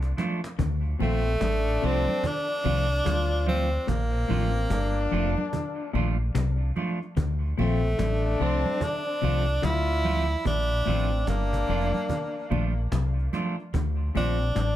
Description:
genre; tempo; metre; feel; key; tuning
roots reggae; 73 BPM; 4/4; swing 63% on 16ths; D minor; A4 = 440 Hz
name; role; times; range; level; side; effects
deep dub fingered electric bass; bass; 0.0-14.8 s; F1 to D2; -26 LUFS; equal; none
cajon; drums; 0.0-14.8 s; none; -35 LUFS; equal; none
clean electric guitar; accompaniment; 0.2-14.4 s; F3 to F4; -33 LUFS; right 3 dB; phaser, dub echo
congas; percussion; 0.2-14.8 s; none; -34 LUFS; right 4 dB; none
semi-hollow electric guitar; riff; 0.6-14.8 s; F2 to D3; -33 LUFS; left 10 dB; spring reverb
edgy tenor saxophone; melody; 1.0-14.8 s; A3 to E4; -29 LUFS; right 1 dB; dub echo
clear trombone; second line; 1.0-14.8 s; C4 to F4; -33 LUFS; left 5 dB; dub echo
room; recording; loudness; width
light reverb; none; -24 LUFS; side -13 dB against mid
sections
0.6-14.8 A section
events
drum fill 0.0-0.6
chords
0.0 Bbmaj7 (rootless); 0.6 Dm7; 3.9 Bbmaj7; 7.2 Dm7; 10.5 Bbmaj7; 13.7 Dm7

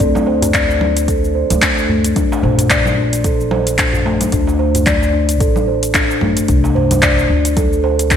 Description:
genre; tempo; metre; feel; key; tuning
organic downtempo; 111 BPM; 4/4; swing 57% on 16ths; unclear; A4 = 440 Hz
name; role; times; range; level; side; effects
steel tongue drum; arpeggios; 0.0-8.2 s; A3 to D5; -17 LUFS; left 1 dB; low-pass filter, digital delay
upright bass; bass; 0.0-8.2 s; A1 to D2; -18 LUFS; equal; sidechain pumping
deep house drum kit; drums; 0.0-8.2 s; cabasa, congas, handclaps, hi-hat; -18 LUFS; equal; gated reverb
electronic kick drum; drums; 0.0-8.2 s; none; -18 LUFS; equal; overdrive
darbuka; percussion; 0.2-8.0 s; none; -24 LUFS; right 1 dB; none
room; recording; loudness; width
moderate lush hall reverb, RT60 1.9 s, studio ambience; bright 1980s-style digital production; -12 LUFS; side -8 dB against mid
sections
0.0-8.2 A section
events
filter sweep on steel tongue drum 0.0-8.2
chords
0.0 D5; 2.2 Bb; 4.3 D5; 6.5 N.C.

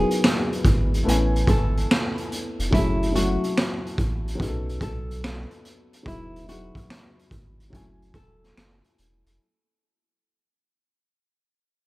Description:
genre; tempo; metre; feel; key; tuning
lo-fi hip hop; 72 BPM; 4/4; swing 65% on 16ths; F# dorian; A4 = 440 Hz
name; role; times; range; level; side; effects
nylon-string guitar; melody; 0.0-8.8 s; E4 to A4; -30 LUFS; equal; low-pass filter, tape echo
dark upright piano; accompaniment; 0.0-9.4 s; F#3 to G#5; -28 LUFS; left 1 dB; cassette tape, low-pass filter
warm sub bass; bass; 0.0-9.4 s; E1 to B1; -26 LUFS; equal; none
raw garage drum kit; drums; 0.1-9.4 s; finger snaps, hi-hat, kick drum, snare drum; -24 LUFS; equal; none
room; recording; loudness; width
little or no reverb; none; -21 LUFS; side -20 dB against mid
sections
0.0-9.4 A section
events
fade-out 0.0-9.4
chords
0.0 Emaj9; 1.1 Amaj7; 2.7 F#m7; 4.4 B9; 6.1 Emaj9; 7.7 F#m7

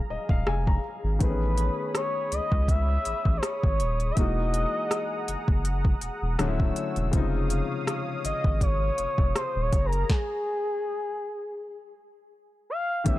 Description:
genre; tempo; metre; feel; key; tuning
contemporary R&B; 81 BPM; 4/4; swing 54% on 16ths; unclear; A4 = 438 Hz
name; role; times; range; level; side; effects
gliding portamento lead; melody; 0.0-13.2 s; Ab4 to F5; -30 LUFS; equal; chorus
warm baby grand piano; accompaniment; 0.0-13.2 s; C3 to Bb5; -33 LUFS; left 4 dB; none
warm analog pad; sustained chords; 0.0-13.2 s; Ab4 to E6; -37 LUFS; equal; chorus, sidechain pumping
saturated sub bass; bass; 0.1-13.2 s; D1 to C#2; -27 LUFS; equal; none
smooth R&B drum kit; drums; 0.3-13.2 s; hi-hat, kick drum, rim click, snare drum; -26 LUFS; equal; overdrive
room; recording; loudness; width
little or no reverb; dark, warm production; -24 LUFS; side -16 dB against mid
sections
0.0-13.1 A section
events
break 0.0-1.2; grand piano fill 0.0-1.2; stop 10.1-13.1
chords
0.0 Gbmaj9; 1.2 Amaj9#11; 4.2 Emaj9#11; 6.4 Dmaj9; 7.1 Dbmaj9/F; 9.7 Gbmaj9; 11.6 N.C.

